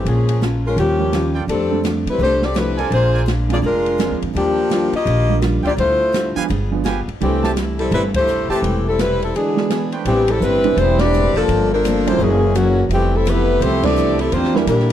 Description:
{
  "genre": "jazz, big band swing",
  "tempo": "168 BPM",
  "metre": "4/4",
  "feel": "swing 62% on 8ths",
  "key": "C major",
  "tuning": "A4 = 440 Hz",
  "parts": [
    { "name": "clear saxophone section", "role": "melody", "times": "0.0-14.9 s", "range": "E3 to Eb5", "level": "-18 LUFS", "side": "left 2 dB", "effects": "slapback echo" },
    { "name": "upright bass", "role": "bass", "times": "0.0-14.9 s", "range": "E1 to C3", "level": "-20 LUFS", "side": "equal", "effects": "none" },
    { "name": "picked steel-string acoustic guitar", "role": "accompaniment", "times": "0.1-14.9 s", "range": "G2 to A4", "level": "-26 LUFS", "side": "left 2 dB", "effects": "none" },
    { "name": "open jazz drum kit", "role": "drums", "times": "0.1-14.9 s", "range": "crash cymbal, hi-hat, kick drum, ride cymbal, snare drum", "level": "-28 LUFS", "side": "right 1 dB", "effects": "none" },
    { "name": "clear upright piano", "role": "accompaniment", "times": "1.0-14.7 s", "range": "E3 to B4", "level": "-23 LUFS", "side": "right 10 dB", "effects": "none" },
    { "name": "clear trumpet section", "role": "stabs", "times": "1.3-3.2, 5.6-10.4 s", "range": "A3 to A5", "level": "-26 LUFS", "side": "right 7 dB", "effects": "none" },
    { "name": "dark trombone section", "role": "second line", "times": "9.3-14.9 s", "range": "A#2 to A4", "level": "-24 LUFS", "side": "right 6 dB", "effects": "none" }
  ],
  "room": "studio ambience",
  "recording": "dry, close 1970s-style studio recording",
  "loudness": "-15 LUFS",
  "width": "side -11 dB against mid",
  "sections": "0.0-10.1 A section; 10.1-14.9 B section",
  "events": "band accent 8.1, 10.9, 13.8",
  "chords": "0.1 Bbm7; 0.8 Eb9; 1.5 F69; 2.9 Bb7; 4.3 Ebmaj9; 5.8 Dm11; 6.5 G7b9; 7.2 C6; 9.3 E7; 10.1 Am11; 11.5 Gm11; 12.2 F#9; 12.9 Fmaj9#11; 14.3 Em7b5"
}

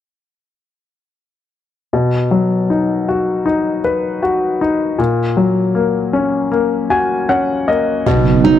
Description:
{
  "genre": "pop",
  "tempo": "78 BPM",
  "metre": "4/4",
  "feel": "straight",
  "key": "unclear",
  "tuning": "A4 = 440 Hz",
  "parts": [
    { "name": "clear concert grand piano", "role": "accompaniment", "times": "1.9-8.6 s", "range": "A#2 to G#5", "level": "-14 LUFS", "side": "left 3 dB", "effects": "none" },
    { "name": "sweeping resonant pad", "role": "sustained chords", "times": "8.1-8.6 s", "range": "C#3 to D#4", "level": "-14 LUFS", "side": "right 6 dB", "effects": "chorus, phaser" },
    { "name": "impact", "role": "sound effects", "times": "8.1-8.6 s", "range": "none", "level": "-20 LUFS", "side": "right 4 dB", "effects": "none" },
    { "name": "nylon-string guitar", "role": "melody", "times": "8.4-8.6 s", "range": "D#4", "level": "-9 LUFS", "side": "right 6 dB", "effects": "none" }
  ],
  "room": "light reverb, studio ambience",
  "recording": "dry, close 1970s-style studio recording",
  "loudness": "-14 LUFS",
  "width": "side -10 dB against mid",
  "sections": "1.9-8.1 A section",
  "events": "grand piano fill 6.5-8.1; impact 8.1-8.6",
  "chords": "1.9 B; 5.0 F#/A#; 8.1 Badd9"
}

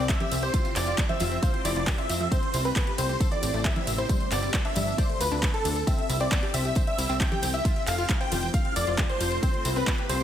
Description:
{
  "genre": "uplifting trance",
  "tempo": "135 BPM",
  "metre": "4/4",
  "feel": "straight",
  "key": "C major",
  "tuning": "A4 = 440 Hz",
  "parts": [
    { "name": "big supersaw lead", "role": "melody", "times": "0.0-10.2 s", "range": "A4 to G5", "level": "-31 LUFS", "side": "right 1 dB", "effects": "phaser, sidechain pumping, ping-pong delay" },
    { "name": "clear baby grand piano", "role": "second line", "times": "0.0-10.2 s", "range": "A4 to G5", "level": "-36 LUFS", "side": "equal", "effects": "sidechain pumping, dub echo" },
    { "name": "shimmering ambient pad", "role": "sustained chords", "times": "0.0-10.2 s", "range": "C3 to G4", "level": "-36 LUFS", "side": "left 1 dB", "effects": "chorus, built-in reverb, phaser, sidechain pumping" },
    { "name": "wide unison pluck", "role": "arpeggios", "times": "0.0-10.2 s", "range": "E3 to F5", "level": "-34 LUFS", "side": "left 4 dB", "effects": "sidechain pumping, dub echo" },
    { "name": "plucky analog bass", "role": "bass", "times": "0.0-10.2 s", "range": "F1 to F2", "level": "-30 LUFS", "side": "equal", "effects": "sidechain pumping" },
    { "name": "electronic kick drum", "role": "drums", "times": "0.1-10.0 s", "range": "none", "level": "-26 LUFS", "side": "equal", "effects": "studio reverb" },
    { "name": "house drum kit", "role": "drums", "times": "0.1-10.2 s", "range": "congas, handclaps, hi-hat, ride cymbal", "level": "-32 LUFS", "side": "right 1 dB", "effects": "sidechain pumping on hats, studio reverb, sidechain pumping on cymbals, sidechain pumping on perc" },
    { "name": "tambourine", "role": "percussion", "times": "0.1-10.2 s", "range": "none", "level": "-39 LUFS", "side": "left 2 dB", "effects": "none" }
  ],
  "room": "digital ambience",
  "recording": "none",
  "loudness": "-23 LUFS",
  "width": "side -10 dB against mid",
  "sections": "0.0-10.2 A section",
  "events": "none",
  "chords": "0.0 C; 0.5 F; 2.3 C; 3.2 Amadd9; 4.1 Gsus4; 5.0 Dm; 5.9 C; 7.7 F; 9.4 C"
}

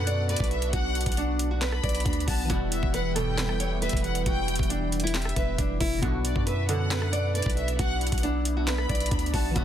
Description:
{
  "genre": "hip hop, trap",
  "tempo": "136 BPM",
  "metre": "4/4",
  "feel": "half-time",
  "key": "B minor",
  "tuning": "A4 = 440 Hz",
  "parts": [
    { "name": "nylon-string guitar", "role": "melody", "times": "0.0-9.6 s", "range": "D4 to D5", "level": "-31 LUFS", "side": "right 2 dB", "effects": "low-pass filter" },
    { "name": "warm symphonic violin section", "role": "second line", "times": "0.0-9.5 s", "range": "D5 to B5", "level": "-35 LUFS", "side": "left 2 dB", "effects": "ping-pong delay" },
    { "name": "glassy digital keys", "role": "accompaniment", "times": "0.0-9.6 s", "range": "B2 to F#4", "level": "-38 LUFS", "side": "left 2 dB", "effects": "none" },
    { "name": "warm analog pad", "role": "sustained chords", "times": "0.0-9.6 s", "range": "E3 to F#4", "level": "-36 LUFS", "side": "left 1 dB", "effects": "chorus" },
    { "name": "long sustained 808-style bass", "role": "bass", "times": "0.0-9.6 s", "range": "E1 to F#2", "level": "-29 LUFS", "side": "equal", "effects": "none" },
    { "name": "trap drum kit", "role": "drums", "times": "0.1-9.6 s", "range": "handclaps, hi-hat, kick drum, rim click, snare drum", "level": "-29 LUFS", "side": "equal", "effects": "overdrive" },
    { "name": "chorused polysynth", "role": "stabs", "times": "2.5-9.6 s", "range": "B1 to D3", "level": "-37 LUFS", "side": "right 1 dB", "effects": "ping-pong delay" }
  ],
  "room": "little or no reverb",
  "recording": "dense, heavily limited modern master",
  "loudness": "-24 LUFS",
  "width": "side -10 dB against mid",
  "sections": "0.0-9.6 A section",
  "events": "none",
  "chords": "0.0 Bm; 2.5 Emadd9; 6.0 Bm"
}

